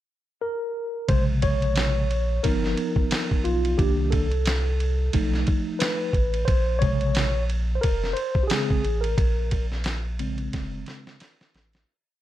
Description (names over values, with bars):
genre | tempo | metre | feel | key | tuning
hip hop, jazz-hop | 89 BPM | 4/4 | swing 57% on 16ths | Bb dorian | A4 = 440 Hz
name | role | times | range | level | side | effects
mellow tine electric piano | accompaniment | 0.4-11.2 s | C3 to Db5 | -26 LUFS | equal | medium stereo tremolo
sub bass with octave | bass | 1.1-11.8 s | F1 to C2 | -26 LUFS | equal | none
lo-fi sampler-style drum kit | drums | 1.1-11.9 s | hi-hat, kick drum, ride cymbal, snare drum | -26 LUFS | equal | none
room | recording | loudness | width
light reverb | none | -22 LUFS | side -13 dB against mid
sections
0.0-1.1 pickup bar; 1.1-11.9 A section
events
tine electric piano solo 1.1-11.9; fade-out 9.2-11.9; drum fill 10.5-11.9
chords
0.0 N.C.; 1.1 Bbm9; 2.4 G7alt; 3.8 Cm9; 5.1 B7#11; 6.5 Bbm9